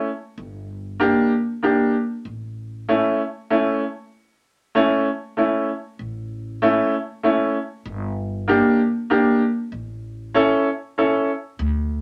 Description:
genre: klezmer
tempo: 96 BPM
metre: 3/4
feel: straight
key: unclear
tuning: A4 = 442 Hz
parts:
  - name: bright upright piano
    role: accompaniment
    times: 0.0-11.3 s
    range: A3 to A4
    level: -20 LUFS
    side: equal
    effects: none
  - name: upright bass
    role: bass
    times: 0.4-3.0, 6.0-12.0 s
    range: G1 to D2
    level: -31 LUFS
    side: equal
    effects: none
room: wet small room reverb, RT60 0.6 s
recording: none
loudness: -21 LUFS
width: mono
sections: 0.0-6.0 A section; 6.0-12.0 A section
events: none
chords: 0.4 Gm; 2.3 A; 7.9 Gm; 9.7 A

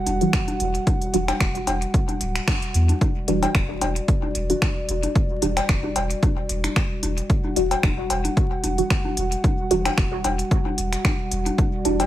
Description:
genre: dub techno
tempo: 112 BPM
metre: 4/4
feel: swing 55% on 16ths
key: E minor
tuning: A4 = 443 Hz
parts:
  - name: dark analog pad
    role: sustained chords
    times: 0.0-12.1 s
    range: G3 to F#5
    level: -29 LUFS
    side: right 1 dB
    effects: chorus, sidechain pumping
  - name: soft dub sub bass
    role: bass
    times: 0.1-12.0 s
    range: D1 to E2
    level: -26 LUFS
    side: equal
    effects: sidechain pumping
  - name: deep house drum kit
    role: drums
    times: 0.1-12.1 s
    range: finger snaps, hi-hat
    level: -28 LUFS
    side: equal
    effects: dub echo
  - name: congas and cowbell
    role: percussion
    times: 0.1-12.1 s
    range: none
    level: -28 LUFS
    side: left 3 dB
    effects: overdrive, sidechain pumping on perc, dub echo
  - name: filtered dub chord stab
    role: stabs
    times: 0.2-12.1 s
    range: E3 to F#4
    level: -25 LUFS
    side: right 1 dB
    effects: phaser, sidechain pumping, dub echo
  - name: electronic kick drum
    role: drums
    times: 0.3-11.7 s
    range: none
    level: -22 LUFS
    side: equal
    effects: none
room: digital ambience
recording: vinyl crackle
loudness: -20 LUFS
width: side -13 dB against mid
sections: 0.0-3.0 A section; 3.0-12.1 A section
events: filter sweep on synth stab 0.0-3.0; band accent 2.5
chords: 0.0 Em9

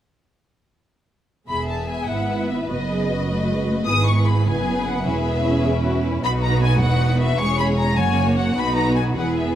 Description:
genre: quick classical-period movement for string orchestra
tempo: 102 BPM (dotted quarters)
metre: 6/8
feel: rubato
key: E major, B major from 6.2 s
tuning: A4 = 440 Hz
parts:
  - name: warm symphonic violin section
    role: melody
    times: 1.5-9.6 s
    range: D#5 to D#6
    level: -25 LUFS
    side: left 4 dB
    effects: none
  - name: bright symphonic violin section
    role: second line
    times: 1.5-9.6 s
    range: E4 to E5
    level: -28 LUFS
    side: left 2 dB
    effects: none
  - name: warm studio viola section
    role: accompaniment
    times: 1.5-9.6 s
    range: G#3 to G#4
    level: -24 LUFS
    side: right 1 dB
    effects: none
  - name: clear symphonic double bass section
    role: bass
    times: 1.5-9.6 s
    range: E1 to B1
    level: -23 LUFS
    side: right 2 dB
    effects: none
  - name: rich symphonic cello section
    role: bass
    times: 1.5-9.6 s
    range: E2 to B2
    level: -26 LUFS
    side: right 2 dB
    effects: none
room: light reverb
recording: close, detailed microphones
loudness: -18 LUFS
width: side -11 dB against mid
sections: 1.5-9.6 A section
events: none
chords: 1.5 E; 2.7 B7/F#; 3.9 E/G#; 5.1 E; 6.2 B; 6.8 E5; 7.4 C#m/E; 8.0 F#; 8.6 B

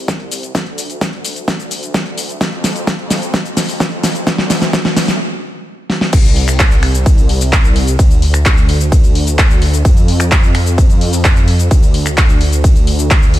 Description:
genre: EDM, festival progressive house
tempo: 129 BPM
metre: 4/4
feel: straight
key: D minor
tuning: A4 = 440 Hz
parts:
  - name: wide detuned saw bass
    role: bass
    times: 0.0-13.4 s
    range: C2 to F2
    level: -16 LUFS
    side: equal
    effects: chorus, sidechain pumping, high-pass filter
  - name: big-room dance drum kit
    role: drums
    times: 0.1-13.4 s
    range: cabasa, crash cymbal, finger snaps, handclaps, hi-hat, ride cymbal, snare drum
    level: -17 LUFS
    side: equal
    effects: none
  - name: electronic kick drum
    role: drums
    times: 0.1-13.2 s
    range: none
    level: -11 LUFS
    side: equal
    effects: high-pass filter on kick
room: little or no reverb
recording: none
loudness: -10 LUFS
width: side -14 dB against mid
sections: 0.0-6.1 A section; 6.1-13.4 B section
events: build-up 0.0-6.1; drum fill 0.0-5.2, 5.9; stop 5.2-6.1; drop 6.1-13.4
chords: none

